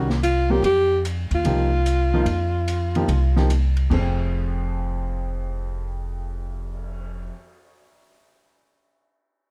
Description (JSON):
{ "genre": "modal jazz", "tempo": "147 BPM", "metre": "4/4", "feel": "swing 66% on 8ths", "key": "F minor", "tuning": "A4 = 440 Hz", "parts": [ { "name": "warm grand piano", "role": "accompaniment", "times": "0.0-7.3 s", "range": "F2 to C5", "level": "-30 LUFS", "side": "equal", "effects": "none" }, { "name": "upright bass", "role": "bass", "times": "0.0-7.3 s", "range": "F1 to F2", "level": "-25 LUFS", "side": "equal", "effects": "none" }, { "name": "open jazz drum kit", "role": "drums", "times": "0.1-7.1 s", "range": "crash cymbal, cymbal swell, hi-hat, kick drum, ride cymbal, snare drum", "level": "-37 LUFS", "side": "equal", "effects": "none" }, { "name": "breathy alto saxophone", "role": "melody", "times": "0.2-3.5 s", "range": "F4 to G4", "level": "-24 LUFS", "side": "equal", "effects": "none" } ], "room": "little or no reverb", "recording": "dark, warm production", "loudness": "-22 LUFS", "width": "mono", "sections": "0.0-3.9 A section; 3.9-7.2 B section", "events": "none", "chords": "0.0 F7sus4; 3.9 Fm" }